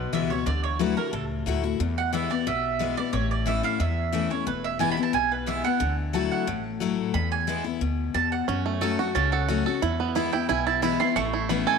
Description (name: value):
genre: bluegrass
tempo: 180 BPM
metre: 4/4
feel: straight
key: unclear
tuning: A4 = 441 Hz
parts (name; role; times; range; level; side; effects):
- picked steel-string acoustic guitar; accompaniment; 0.0-11.8 s; E2 to F#4; -27 LUFS; left 11 dB; none
- mandolin; stabs; 0.0-11.8 s; A4 to C#6; -28 LUFS; right 11 dB; none
- upright bass; bass; 0.0-11.6 s; E1 to F#2; -30 LUFS; right 1 dB; none
- bluegrass banjo; arpeggios; 8.5-11.8 s; A3 to A4; -27 LUFS; right 11 dB; tape echo
room: light reverb, small room ambience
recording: 1960s-style stereo with parts hard left and right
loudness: -23 LUFS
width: side -5 dB against mid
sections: 0.0-11.8 A section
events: mandolin solo 0.0-11.8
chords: 0.5 Dadd9; 1.8 E; 3.1 A; 4.5 E; 5.8 Dadd9; 7.1 E; 8.5 F#m; 9.8 E; 11.2 Aadd9